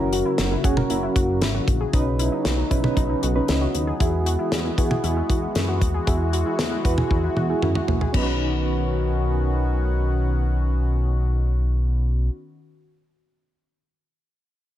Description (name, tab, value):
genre	synth-pop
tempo	116 BPM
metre	4/4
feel	straight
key	B major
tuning	A4 = 440 Hz
part	soft electric-piano-like synth keys	accompaniment	0.0-12.3 s	C#4 to B4	-27 LUFS	right 3 dB	chorus, tremolo
part	sweeping resonant pad	sustained chords	0.0-12.3 s	C#3 to F#4	-28 LUFS	left 2 dB	chorus
part	chorused synth bass	bass	0.0-12.3 s	F#1 to F#2	-23 LUFS	equal	none
part	warbly dusty pluck	arpeggios	0.1-12.4 s	B3 to B4	-31 LUFS	left 2 dB	chorus, ping-pong delay
part	damped 70s drum kit	drums	0.1-8.3 s	crash cymbal, hi-hat, kick drum, snare drum, toms	-24 LUFS	equal	gated reverb
room	light reverb, studio reverb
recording	none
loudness	-20 LUFS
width	side -12 dB against mid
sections	0.0-8.1 A section; 8.1-12.3 B section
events	drum fill 7.1-8.1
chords	0.0 F#; 1.9 Badd9; 4.0 Eadd9; 8.1 Badd9